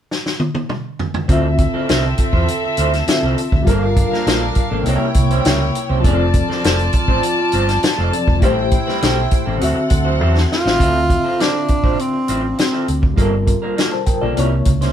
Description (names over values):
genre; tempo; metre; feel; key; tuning
lush 1970s-style soul; 101 BPM; 4/4; straight; D minor; A4 = 440 Hz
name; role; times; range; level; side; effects
vintage drum kit; drums; 0.1-14.9 s; hi-hat, kick drum, snare drum, toms; -18 LUFS; equal; none
warm studio string section; second line; 1.3-10.8 s; C4 to A5; -22 LUFS; equal; none
barky reed electric piano; accompaniment; 1.3-14.9 s; C3 to A5; -22 LUFS; left 2 dB; overdrive, tremolo
electric guitar through a small old amp; riff; 1.3-14.9 s; F3 to C5; -24 LUFS; right 4 dB; none
fingered electric bass; bass; 1.3-14.9 s; E1 to E2; -19 LUFS; equal; none
warm tenor saxophone; melody; 10.5-13.0 s; C4 to F4; -19 LUFS; equal; tape echo
room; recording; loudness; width
light reverb; band playing live in one room; -14 LUFS; side -10 dB against mid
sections
0.0-1.3 A section; 1.3-10.8 B section; 10.8-14.9 C section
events
drum fill 0.1-1.3, 10.2-10.8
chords
0.0 N.C.; 1.3 Dm9; 3.7 Gm9; 4.9 C7b9; 6.0 F6; 8.4 Am7; 9.6 D9; 10.8 Dm9; 13.2 Gm9; 14.4 C7b9